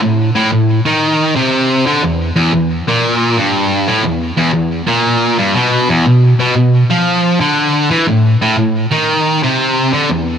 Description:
rock; 119 BPM; 4/4; swing 68% on 8ths; A4 = 440 Hz
sludgy distorted guitar; solo; 0.0-10.4 s; E2 to F3; -10 LUFS; equal; overdrive, digital delay
moderate club reverb, RT60 0.7 s; -10 LUFS; side -8 dB against mid
0.0-10.4 A section

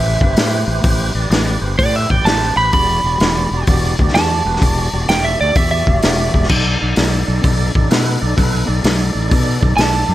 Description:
blues rock power trio and southern rock; 128 BPM; 4/4; swing 67% on 8ths; E minor; A4 = 440 Hz
lightly driven lead guitar; melody; 0.0-6.5, 9.8-10.1 s; D5 to B5; -18 LUFS; right 2 dB
tonewheel organ; sustained chords; 0.0-10.1 s; D#4 to D5; -23 LUFS; right 2 dB; slow rotary speaker
fuzz fingered electric bass; bass; 0.0-10.1 s; E1 to B2; -18 LUFS; equal; overdrive
vintage drum kit; drums; 0.2-9.9 s; crash cymbal, hi-hat, kick drum, snare drum; -16 LUFS; left 1 dB
light reverb; -13 LUFS; side -14 dB against mid
0.0-10.1 A section
lead electric guitar solo 0.0-10.1
0.0 Am7; 2.7 Em7; 6.5 B7#9

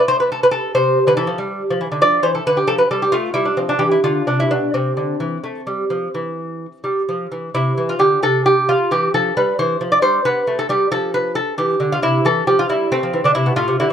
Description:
classical, baroque-style dance for lute; 83-94 BPM (dotted quarters); 12/8; rubato; C major; A4 = 440 Hz
lute; solo; 0.0-13.9 s; A2 to D5; -15 LUFS; equal
light reverb; close, detailed microphones; -15 LUFS; side -8 dB against mid
0.0-7.6 A section; 7.6-13.9 B section
0.0 Am; 2.0 Dm; 3.3 G7; 4.7 C; 10.3 G9; 11.6 C; 12.9 Am

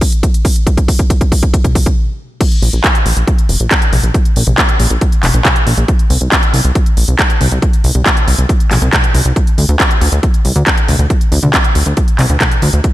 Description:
uplifting trance; 138 BPM; 4/4; straight; A4 = 439 Hz
electronic kick drum; drums; 0.0-12.9 s; -12 LUFS; equal; overdrive
techno drum kit; drums; 0.0-12.9 s; crash cymbal, handclaps, hi-hat, toms; -15 LUFS; equal; overdrive
plucky analog bass; bass; 2.6-12.8 s; F1 to D2; -12 LUFS; equal; sidechain pumping
light reverb, digital ambience; -10 LUFS; side -15 dB against mid
0.0-2.4 A section; 2.4-12.9 B section
build-up 0.0-2.4; drum fill 0.0-2.0; stop 2.0-2.4; drop 2.4-12.9

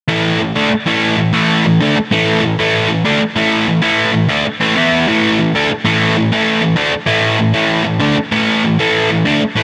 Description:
punk; 193 BPM; 4/4; straight; A4 = 440 Hz
sludgy distorted guitar; solo; 0.1-9.6 s; A2 to E4; -13 LUFS; equal; overdrive, digital delay
light reverb; -13 LUFS; mono
0.1-9.6 A section
0.1 A5; 4.8 E5; 5.1 A5

